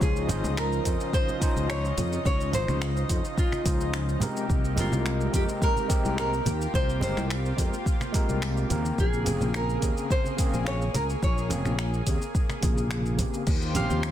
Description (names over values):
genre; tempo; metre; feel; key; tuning
sunset chillout; 107 BPM; 4/4; straight; Ab major; A4 = 440 Hz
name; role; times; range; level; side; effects
nylon-string guitar; melody; 0.0-14.1 s; F4 to F5; -32 LUFS; equal; digital delay, shimmer reverb
overdriven tine electric piano; accompaniment; 0.0-14.1 s; C3 to Db5; -33 LUFS; equal; medium tremolo, auto-pan, digital delay, shimmer reverb
lush unison pad; sustained chords; 0.0-14.1 s; C3 to Eb5; -35 LUFS; equal; chorus, shimmer reverb
sustaining fretless electric bass; bass; 0.0-14.1 s; F1 to F2; -28 LUFS; equal; ensemble chorus
deep house drum kit; drums; 0.0-14.1 s; crash cymbal, finger snaps, hi-hat, shaker; -36 LUFS; left 1 dB; small room reverb, soft clipping on snare
electronic kick drum; drums; 0.0-13.6 s; none; -26 LUFS; equal; small room reverb
congas; percussion; 0.3-14.0 s; none; -32 LUFS; right 2 dB; none
drifting glass-harmonics texture; texture; 13.6-14.1 s; C6; -42 LUFS; right 2 dB; none
room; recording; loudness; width
light reverb; dense, heavily limited modern master; -24 LUFS; side -11 dB against mid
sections
0.0-14.1 A section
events
none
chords
0.0 Dbmaj9; 4.2 Abmaj9; 9.0 Bbm9; 13.5 Eb13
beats
| 0.01 0.57 1.13 1.69 | 2.25 2.81 3.38 3.94 | 4.50 5.06 5.62 6.18 | 6.74 7.30 7.86 8.42 | 8.98 9.54 10.10 10.66 | 11.23 11.79 12.35 12.91 | 13.47 14.03